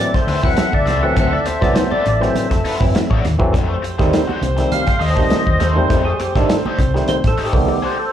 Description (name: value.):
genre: funk.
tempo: 102 BPM.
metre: 4/4.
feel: straight.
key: unclear.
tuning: A4 = 440 Hz.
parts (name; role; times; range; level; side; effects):
percussive tonewheel organ; melody; 0.0-8.1 s; G4 to F#5; -21 LUFS; left 1 dB; overdrive, slow rotary speaker, slapback echo.
warm horn section; second line; 0.0-7.9 s; A3 to E5; -25 LUFS; equal; slapback echo.
barky tine electric piano; stabs; 0.0-7.8 s; Eb3 to D4; -22 LUFS; moving between left 1 dB and right 7 dB; overdrive, auto-pan, slapback echo.
raw garage guitar; accompaniment; 0.1-8.0 s; A3 to D5; -26 LUFS; left 6 dB; wah, overdrive, slapback echo.
hollow-body short-scale fingered electric bass; bass; 0.1-7.6 s; F1 to F2; -20 LUFS; equal; none.
warm soul drum kit; drums; 0.1-7.7 s; hi-hat, kick drum, snare drum; -19 LUFS; equal; none.
congas; percussion; 0.3-7.2 s; none; -28 LUFS; right 5 dB; slapback echo.
room: little or no reverb.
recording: live gig heard through the venue's PA, club reverb.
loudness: -14 LUFS.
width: side -10 dB against mid.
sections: 0.0-8.1 A section.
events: tonewheel organ solo 0.0-8.1; break 7.7-8.1.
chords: 0.0 D9; 3.5 F9 (rootless).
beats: 0.58 | 1.17 1.76 2.35 2.95 | 3.54 4.13 4.72 5.31 | 5.90 6.50 7.09 7.68.